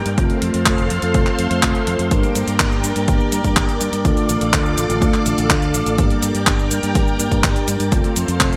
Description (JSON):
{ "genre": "italo disco", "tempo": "124 BPM", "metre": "4/4", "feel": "straight", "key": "G minor", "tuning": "A4 = 445 Hz", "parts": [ { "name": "string machine, full ensemble", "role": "sustained chords", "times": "0.0-8.6 s", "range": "A4 to D6", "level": "-26 LUFS", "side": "equal", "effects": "ensemble chorus" }, { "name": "mellow synth brass", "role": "stabs", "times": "0.0-8.6 s", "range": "G2 to Bb4", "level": "-24 LUFS", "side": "equal", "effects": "chorus, delay" }, { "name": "fingered electric bass", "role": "bass", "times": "0.0-8.6 s", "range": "F1 to G2", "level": "-25 LUFS", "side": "equal", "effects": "none" }, { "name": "clean 12-bit digital drum machine", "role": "drums", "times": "0.1-8.6 s", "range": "cabasa, handclaps, hi-hat", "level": "-24 LUFS", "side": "equal", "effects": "none" }, { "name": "electronic kick drum", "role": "drums", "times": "0.2-8.5 s", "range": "none", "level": "-22 LUFS", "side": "equal", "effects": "none" } ], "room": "moderate plate reverb, RT60 2.6 s", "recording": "bright 1980s-style digital production", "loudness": "-18 LUFS", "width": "mono", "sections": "0.0-8.6 A section", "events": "none", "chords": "0.2 F; 2.1 Gm; 4.0 Dm; 6.0 Gm; 7.9 F", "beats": "| 0.18 0.66 1.15 1.63 | 2.11 2.60 3.08 3.57 | 4.05 4.53 5.02 5.50 | 5.99 6.47 6.95 7.44 | 7.92 8.40" }